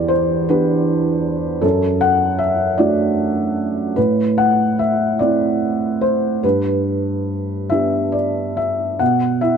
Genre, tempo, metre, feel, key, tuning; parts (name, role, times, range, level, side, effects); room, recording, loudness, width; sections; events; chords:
neoclassical minimalist piano; 45-53 BPM (dotted quarters); 6/8; rubato; E minor; A4 = 440 Hz
felt-muted upright piano; solo; 0.0-9.6 s; E2 to F#5; -16 LUFS; equal
moderate plate reverb, RT60 3.6 s; -16 LUFS; side -7 dB against mid
0.0-9.0 A section
0.0 Em7; 1.6 D/F#; 4.0 Am; 6.4 G; 9.0 Bsus4